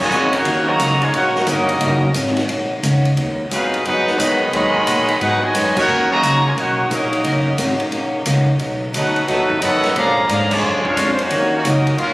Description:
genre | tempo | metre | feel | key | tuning
jazz, big band swing | 177 BPM | 4/4 | swing 64% on 8ths | Eb minor | A4 = 442 Hz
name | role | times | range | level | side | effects
clear trumpet section | melody | 0.0-12.1 s | Bb3 to Cb6 | -18 LUFS | equal | none
clear trombone section | second line | 0.0-12.1 s | Bb2 to F#4 | -22 LUFS | equal | none
warm saxophone section | sustained chords | 0.0-12.1 s | Bb2 to Cb5 | -28 LUFS | equal | none
upright bass | bass | 0.0-12.1 s | Gb1 to Bb2 | -21 LUFS | equal | none
picked steel-string acoustic guitar | accompaniment | 0.1-12.1 s | Ab2 to Gb4 | -23 LUFS | equal | none
swinging big-band drum kit | drums | 0.1-12.1 s | crash cymbal, hi-hat, kick drum, ride cymbal, snare drum | -25 LUFS | equal | none
room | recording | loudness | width
moderate scoring stage reverb, RT60 1.9 s | recorded on a phone in the room, studio reverb | -14 LUFS | side -19 dB against mid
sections
0.0-12.1 A section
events
band accent 5.7, 10.5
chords
0.0 Ebm7; 3.2 Abm7; 5.9 Ebm7; 8.6 B7; 10.0 Bb7#9; 11.3 Ebm7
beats
0.12 | 0.46 0.79 1.13 1.47 | 1.81 2.15 2.49 2.83 | 3.17 3.51 3.85 4.19 | 4.53 4.87 5.21 5.55 | 5.89 6.22 6.56 6.90 | 7.24 7.58 7.92 8.26 | 8.60 8.94 9.28 9.62 | 9.96 10.29 10.63 10.97 | 11.31 11.65 11.99

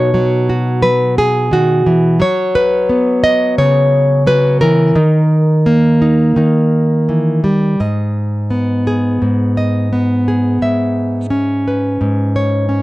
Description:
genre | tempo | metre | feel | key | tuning
folk, solo fingerstyle acoustic guitar | 86 BPM | 4/4 | rubato | G# minor | A4 = 440 Hz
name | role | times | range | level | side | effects
nylon-string guitar | solo | 0.0-12.8 s | G#2 to E5 | -11 LUFS | equal | none
room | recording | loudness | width
small room ambience | dry, close 1970s-style studio recording | -11 LUFS | side -18 dB against mid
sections
0.0-7.8 A section; 7.8-12.8 B section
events
none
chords
0.0 Badd9; 2.2 F#sus4; 5.0 D#; 7.8 G#m; 10.6 C#m7/G#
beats
0.12 0.82 1.51 | 2.20 2.89 3.57 4.26 | 4.95 5.65 6.36 7.07 | 7.79 8.50 9.21 9.91 | 10.61 11.31 12.00 12.69

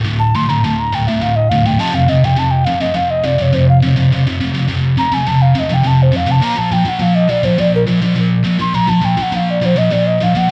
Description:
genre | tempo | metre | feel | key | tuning
metal | 104 BPM | 4/4 | straight | unclear | A4 = 444 Hz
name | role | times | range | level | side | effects
scooped high-gain guitar | riff | 0.0-10.5 s | D2 to Bb3 | -15 LUFS | equal | distortion
alto ocarina | melody | 0.2-10.5 s | Bb4 to C6 | -19 LUFS | equal | none
room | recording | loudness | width
light reverb, studio reverb | dark, warm production | -14 LUFS | mono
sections
0.0-10.5 A section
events
ocarina solo 0.0-10.5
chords
0.0 D5; 1.8 F5; 6.4 Bb5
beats
0.06 0.64 1.22 | 1.80 2.38 2.96 3.54 | 4.12 4.69 5.27 5.85 | 6.43 7.01 7.59 8.17 | 8.75 9.33 9.91 10.49

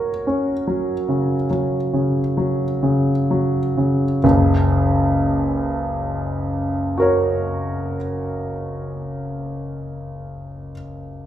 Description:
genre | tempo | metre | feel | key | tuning
classical, romantic nocturne for solo piano | 21-25 BPM (dotted quarters) | 12/8 | rubato | F# major | A4 = 438 Hz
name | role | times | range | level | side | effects
warm concert grand piano | solo | 0.0-11.3 s | F#1 to F#6 | -18 LUFS | equal | none
room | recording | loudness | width
moderate recital hall reverb, RT60 1.3 s | none | -18 LUFS | side -11 dB against mid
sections
0.0-4.2 A section; 4.2-11.3 B section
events
slowing down 0.0-4.2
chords
0.0 F#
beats
1.50 | 4.22 6.96 9.60

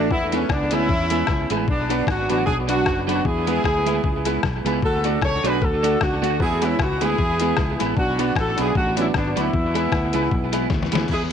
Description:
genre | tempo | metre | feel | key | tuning
ska | 153 BPM | 4/4 | swing 56% on 8ths | E mixolydian | A4 = 443 Hz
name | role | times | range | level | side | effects
warm horn section | melody | 0.0-11.2 s | A3 to C#5 | -23 LUFS | left 1 dB | none
electric guitar at the edge of break-up | accompaniment | 0.0-11.1 s | F#3 to F#4 | -26 LUFS | right 12 dB | wide subtle chorus, tape echo
clear upright piano | stabs | 0.0-11.1 s | D4 to B4 | -28 LUFS | left 9 dB | tape echo
fingered electric bass | bass | 0.0-11.3 s | F#1 to E2 | -26 LUFS | equal | none
trip hop sampler-style drum kit | drums | 0.1-11.2 s | crash cymbal, hi-hat, kick drum, rim click, snare drum | -25 LUFS | left 2 dB | tape echo
room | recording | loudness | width
light reverb, digital ambience | 1960s-style stereo with parts hard left and right | -18 LUFS | side -8 dB against mid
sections
0.0-11.1 A section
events
drum fill 10.7-11.1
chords
0.1 E; 1.7 Bm; 3.3 E; 4.8 D; 6.4 E; 8.0 Bm; 9.5 E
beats
| 0.10 0.50 0.89 1.28 | 1.68 2.07 2.47 2.86 | 3.25 3.65 4.04 4.43 | 4.82 5.22 5.61 6.00 | 6.39 6.79 7.18 7.57 | 7.96 8.36 8.75 9.14 | 9.53 9.92 10.32 10.71 | 11.10

